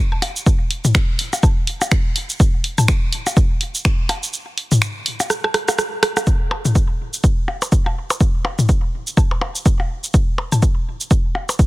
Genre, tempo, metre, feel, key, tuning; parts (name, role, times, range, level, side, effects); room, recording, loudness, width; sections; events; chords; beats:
techno; 124 BPM; 4/4; swing 58% on 16ths
electronic percussion blips and toms; percussion; 0.1-11.6 s; -20 LUFS; left 2 dB
garage drum kit; drums; 0.2-11.7 s; cabasa, finger snaps, hi-hat, rim click; -21 LUFS; right 2 dB; soft clipping on snare
electronic kick drum; drums; 0.5-11.7 s; -16 LUFS; equal
little or no reverb; dense, heavily limited modern master; -16 LUFS; side -20 dB against mid
0.0-6.3 A section; 6.3-11.7 B section
kick drops out 4.3-6.3; drum fill 5.3-6.3
| 0.46 0.95 1.43 1.92 | 2.40 2.88 3.37 3.85 | 4.33 4.82 5.30 5.79 | 6.27 6.75 7.24 7.72 | 8.21 8.69 9.17 9.66 | 10.14 10.62 11.11 11.59